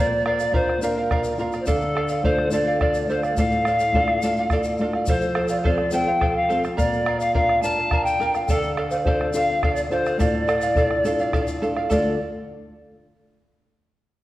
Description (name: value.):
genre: andean folk, Andean ensemble.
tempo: 70 BPM (dotted quarters).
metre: 6/8.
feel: straight.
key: D minor.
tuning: A4 = 441 Hz.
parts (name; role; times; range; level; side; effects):
bright reedy polished pan flute; melody; 0.0-12.2 s; A4 to A5; -23 LUFS; left 1 dB; none.
charango; accompaniment; 0.0-12.1 s; A4 to F5; -26 LUFS; right 2 dB; none.
flamenco guitar; accompaniment; 0.0-12.2 s; A2 to Bb4; -27 LUFS; left 1 dB; none.
bombo; percussion; 0.1-12.2 s; none; -26 LUFS; equal; none.
tube shaker; percussion; 0.1-12.2 s; none; -42 LUFS; left 6 dB; none.
room: wet recital hall reverb, RT60 1.6 s.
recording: worn, warbling old tape, cassette tape, warbly pitch drift.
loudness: -19 LUFS.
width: side -16 dB against mid.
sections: 0.0-11.9 A section; 11.9-13.6 B section.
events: none.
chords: 0.0 Bb; 1.7 Dm; 5.1 F; 6.8 Bb; 8.5 Dm.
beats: 0.82 | 1.68 2.53 | 3.38 4.23 | 5.08 5.93 | 6.78 7.64 | 8.49 9.34 | 10.20 11.05 | 11.90.